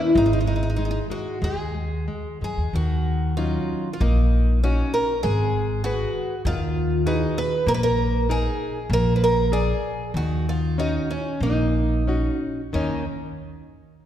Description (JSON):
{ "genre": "fado-style ballad", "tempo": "88-99 BPM", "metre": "4/4", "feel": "rubato", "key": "Eb minor", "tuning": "A4 = 442 Hz", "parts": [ { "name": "picked twelve-string acoustic guitar", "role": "melody", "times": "0.0-13.0 s", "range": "Db4 to Cb5", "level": "-25 LUFS", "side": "equal", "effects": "none" }, { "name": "nylon-string guitar", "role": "accompaniment", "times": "0.0-13.0 s", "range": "Eb3 to D5", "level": "-28 LUFS", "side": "left 2 dB", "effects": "none" }, { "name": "upright bass", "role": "bass", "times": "0.2-13.0 s", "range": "G#1 to F#2", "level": "-23 LUFS", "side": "equal", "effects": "none" } ], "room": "wet concert hall reverb, RT60 2.1 s", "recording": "recorded in a church or concert hall", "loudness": "-20 LUFS", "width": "side -10 dB against mid", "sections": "0.0-2.7 A section; 2.7-12.7 B section; 12.7-14.1 C section", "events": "none", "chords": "0.2 G#5; 2.7 Ebm7; 5.2 Abm7; 7.7 Bb7sus4; 8.9 Bb7; 10.1 Ebm7; 12.7 Eb5" }